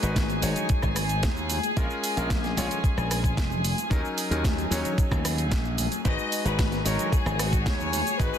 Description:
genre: nu-disco, nu disco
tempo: 112 BPM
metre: 4/4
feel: straight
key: G# dorian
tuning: A4 = 439 Hz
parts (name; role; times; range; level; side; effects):
- clear electric grand piano; accompaniment; 0.0-8.4 s; F#3 to C#5; -32 LUFS; left 2 dB; vintage 12-bit sampler grit, sidechain pumping, digital delay
- rich chamber string section; sustained chords; 0.0-8.4 s; G#4 to G#5; -32 LUFS; equal; vintage 12-bit sampler grit, sidechain pumping
- glassy slap bass; bass; 0.0-8.3 s; E#1 to D#2; -29 LUFS; equal; tube saturation
- house drum kit; drums; 0.0-8.4 s; cabasa, hi-hat, rim click, snare drum; -32 LUFS; right 2 dB; none
- electronic kick drum; drums; 0.2-8.3 s; none; -25 LUFS; equal; none
- congas; percussion; 0.2-8.0 s; none; -36 LUFS; left 2 dB; none
- rich chamber violin section; melody; 6.1-8.4 s; F#4 to D#5; -31 LUFS; left 4 dB; digital delay
room: light reverb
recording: dense, heavily limited modern master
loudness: -23 LUFS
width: side -9 dB against mid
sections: 0.0-8.4 A section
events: none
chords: 0.0 G#m7; 1.8 A#m7; 3.9 D#m7; 6.1 G#m7

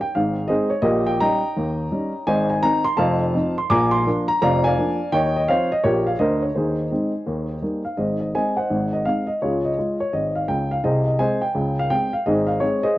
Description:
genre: jazz, stride piano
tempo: 168 BPM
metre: 4/4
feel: swing 65% on 8ths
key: Ab major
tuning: A4 = 440 Hz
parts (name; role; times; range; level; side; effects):
- dark upright piano; solo; 0.0-13.0 s; F1 to D6; -19 LUFS; equal; cassette tape
room: moderate spring reverb, RT60 1.6 s, studio reverb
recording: home recording on cassette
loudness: -19 LUFS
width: side -16 dB against mid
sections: 0.0-8.0 A section; 8.0-13.0 B section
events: none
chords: 0.1 Ab; 0.9 Eb7/Bb; 2.3 Ab; 3.0 F7; 3.7 Bb7; 5.1 Eb13; 6.5 Ab/Eb; 7.3 Eb; 8.0 Ab; 9.4 Db; 10.8 Ab/C; 11.5 Db5; 12.3 Ab

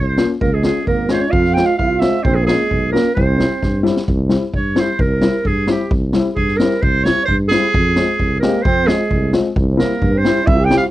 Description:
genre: klezmer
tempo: 131 BPM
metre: 2/4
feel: straight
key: C phrygian dominant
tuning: A4 = 445 Hz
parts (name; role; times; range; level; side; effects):
- clear clarinet; melody; 0.0-10.8 s; G4 to G5; -19 LUFS; right 2 dB; none
- mellow tuba; bass; 0.0-10.8 s; Ab1 to G2; -19 LUFS; equal; none
- dark upright piano; accompaniment; 0.2-10.8 s; G3 to G4; -19 LUFS; left 4 dB; none
- street-band drum kit; drums; 0.2-10.8 s; kick drum, snare drum; -20 LUFS; equal; none
- breathy trombone; second line; 0.4-3.8, 8.4-10.9 s; Ab3 to G4; -21 LUFS; right 6 dB; none
room: little or no reverb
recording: dry, close 1970s-style studio recording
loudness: -13 LUFS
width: side -15 dB against mid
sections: 0.0-4.1 A section; 4.1-10.9 B section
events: drum fill 3.6-4.1; clarinet solo 4.1-10.9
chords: 0.4 Db; 1.3 Fm; 2.2 Bbm; 3.2 C; 7.7 Fm; 9.6 C

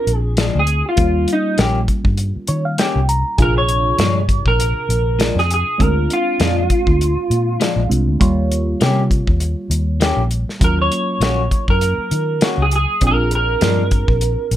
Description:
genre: straight-eighth soul blues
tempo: 100 BPM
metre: 4/4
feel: swing 55% on 16ths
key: unclear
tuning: A4 = 440 Hz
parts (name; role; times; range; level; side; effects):
- electric guitar through a small old amp; melody; 0.0-14.6 s; Eb4 to Db5; -19 LUFS; right 1 dB; analog chorus
- reed electric piano; accompaniment; 0.0-14.6 s; C3 to Bb5; -24 LUFS; right 2 dB; phaser
- vintage muted fingered electric bass; bass; 0.1-14.6 s; Bb1 to Eb3; -18 LUFS; equal; none
- warm soul drum kit; drums; 0.1-14.6 s; hi-hat, kick drum, snare drum; -18 LUFS; equal; none
- electric guitar at the edge of break-up; stabs; 0.4-13.8 s; Bb2 to G4; -21 LUFS; left 4 dB; none
room: light reverb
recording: none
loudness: -14 LUFS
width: side -12 dB against mid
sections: 0.0-14.6 A section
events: reed electric piano fill 2.2-3.4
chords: 0.0 Bb7; 1.0 Eb7; 3.4 Bb7; 8.2 Eb7; 10.6 Ebm7; 13.0 Bb7

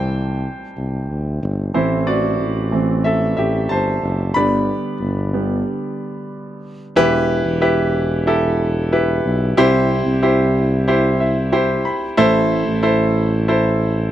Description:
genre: piano-driven pop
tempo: 92 BPM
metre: 4/4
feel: straight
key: E minor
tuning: A4 = 440 Hz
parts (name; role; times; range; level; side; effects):
- clear concert grand piano; accompaniment; 0.0-14.1 s; A2 to B5; -17 LUFS; right 1 dB; none
- warm tuba; bass; 0.0-14.1 s; E1 to D2; -20 LUFS; left 1 dB; none
room: studio ambience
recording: dry, close 1970s-style studio recording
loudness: -15 LUFS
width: side -12 dB against mid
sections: 0.0-7.0 A section; 7.0-14.1 B section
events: grand piano solo 0.0-7.0; stop 5.7-7.0; grand piano fill 10.9-12.2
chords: 0.0 C; 1.7 Am; 4.4 G; 7.0 Em; 9.6 C; 12.2 Am

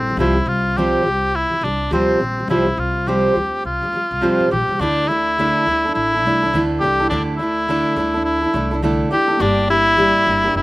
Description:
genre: pop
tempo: 104 BPM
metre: 4/4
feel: swing 60% on 16ths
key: D minor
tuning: A4 = 440 Hz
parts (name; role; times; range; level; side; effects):
- warm cor anglais; melody; 0.0-10.6 s; C4 to G4; -18 LUFS; equal; none
- fingerpicked steel-string acoustic guitar; accompaniment; 0.0-10.6 s; A2 to C5; -20 LUFS; right 1 dB; none
- overdriven reed electric piano; accompaniment; 0.0-4.8, 9.4-10.6 s; G3 to D5; -30 LUFS; left 3 dB; slapback echo
- upright bass; bass; 0.0-10.6 s; F1 to D2; -25 LUFS; equal; none
room: little or no reverb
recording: recorded outdoors, with no room sound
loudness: -15 LUFS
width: side -19 dB against mid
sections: 0.0-4.8 A section; 4.8-10.6 B section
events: none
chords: 0.2 Csus4; 4.8 Dsus2; 9.4 Gm

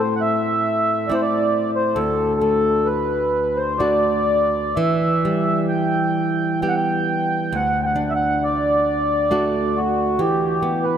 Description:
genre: celtic folk, Celtic slow air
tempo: 66 BPM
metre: 3/4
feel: uneven beats, rubato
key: unclear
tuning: A4 = 440 Hz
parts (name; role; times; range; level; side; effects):
- mellow accordion; melody; 0.0-11.0 s; F#4 to G5; -19 LUFS; equal; none
- flamenco guitar; accompaniment; 0.0-11.0 s; D2 to G4; -22 LUFS; right 1 dB; none
room: wet cathedral reverb, RT60 4.3 s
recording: none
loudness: -17 LUFS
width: side -8 dB against mid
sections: 0.0-11.0 A section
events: none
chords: 0.0 Am; 2.0 D; 4.8 Em; 7.5 D; 10.2 Esus2

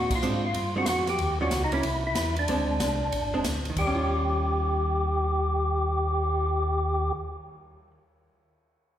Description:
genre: soul jazz organ trio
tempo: 186 BPM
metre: 4/4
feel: swing 64% on 8ths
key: Eb major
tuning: A4 = 439 Hz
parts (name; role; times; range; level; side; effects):
- percussive tonewheel organ; melody; 0.0-7.1 s; D4 to G4; -27 LUFS; equal; slow rotary speaker, overdrive
- mellow tonewheel organ; bass; 0.0-7.1 s; F1 to Bb2; -29 LUFS; equal; slow rotary speaker
- swinging big-band drum kit; drums; 0.1-6.3 s; crash cymbal, cymbal swell, hi-hat, kick drum, ride cymbal, snare drum; -34 LUFS; equal; none
- archtop guitar, miked and amplified; accompaniment; 0.2-7.9 s; Eb3 to F4; -33 LUFS; right 2 dB; none
room: wet recital hall reverb, RT60 1.6 s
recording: recorded in a church or concert hall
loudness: -24 LUFS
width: side -10 dB against mid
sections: 0.0-3.8 A section; 3.8-6.4 B section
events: band accent 0.1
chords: 0.0 Bb9; 1.2 Eb9; 1.8 C; 2.5 Bb9; 3.8 Eb9

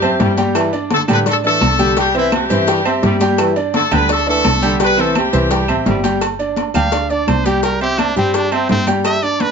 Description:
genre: latin, salsa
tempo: 170 BPM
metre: 4/4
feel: straight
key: G major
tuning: A4 = 439 Hz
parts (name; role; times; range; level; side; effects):
- brilliant horn section; melody; 0.0-6.0 s; E3 to B4; -17 LUFS; left 2 dB; none
- bright grand piano; accompaniment; 0.0-9.5 s; G3 to G5; -18 LUFS; right 2 dB; none
- muted double bass; bass; 0.0-9.5 s; G1 to A2; -21 LUFS; equal; none
- agogo bells and timbales; percussion; 0.0-9.5 s; none; -24 LUFS; right 9 dB; none
- claves; percussion; 0.0-9.2 s; none; -29 LUFS; right 6 dB; none
- congas; percussion; 0.0-9.5 s; none; -23 LUFS; left 4 dB; none
- maracas; percussion; 0.0-9.5 s; none; -34 LUFS; left 5 dB; none
- bright trombone section; second line; 0.2-6.0 s; D3 to G3; -21 LUFS; equal; none
- cowbell; percussion; 0.2-9.5 s; none; -25 LUFS; left 7 dB; none
- brilliant trumpet; melody; 6.8-9.5 s; C4 to F5; -19 LUFS; right 1 dB; none
room: moderate studio reverb, RT60 0.5 s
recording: nothing above 7.5 kHz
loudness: -13 LUFS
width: side -6 dB against mid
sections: 0.0-6.2 A section; 6.2-9.5 B section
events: trumpet solo 6.2-9.5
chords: 0.0 C; 0.6 Gsus2; 2.0 C; 3.4 Gsus2; 4.8 C; 6.2 G5; 7.6 C

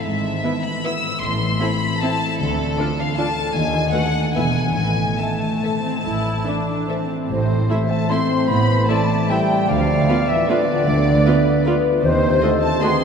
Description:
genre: classical, orchestral ballroom waltz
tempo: 133-166 BPM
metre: 3/4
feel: rubato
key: A minor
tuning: A4 = 439 Hz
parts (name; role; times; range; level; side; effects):
- rich studio violin section; melody; 0.0-12.9 s; A4 to E6; -27 LUFS; left 3 dB; none
- concert harp; arpeggios; 0.0-13.0 s; G#2 to C5; -24 LUFS; left 3 dB; none
- warm studio cello section; bass; 0.0-12.4 s; D2 to A2; -26 LUFS; right 3 dB; none
- warm studio double bass section; bass; 0.0-12.4 s; E1 to D#2; -26 LUFS; right 3 dB; none
- dark studio violin section; second line; 0.4-13.0 s; A4 to C6; -29 LUFS; left 2 dB; none
- warm studio viola section; accompaniment; 0.4-12.9 s; A3 to F#4; -26 LUFS; right 2 dB; none
- mellow concert flute; second line; 7.3-13.0 s; C5 to B#5; -23 LUFS; right 1 dB; none
- dark French horn section; sustained chords; 7.3-13.0 s; B#2 to B#3; -23 LUFS; left 1 dB; none
- warm clarinet; second line; 7.7-13.0 s; G#4 to E5; -24 LUFS; left 1 dB; none
room: wet cathedral reverb, RT60 4.9 s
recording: none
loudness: -17 LUFS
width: side -6 dB against mid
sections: 0.0-7.3 A section; 7.3-13.0 A section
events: none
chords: 0.0 E/G#; 1.2 Am; 2.4 Dm; 3.6 B7/D# (rootless); 4.4 E; 4.8 Am; 9.7 Bdim/D; 12.0 D#dim7

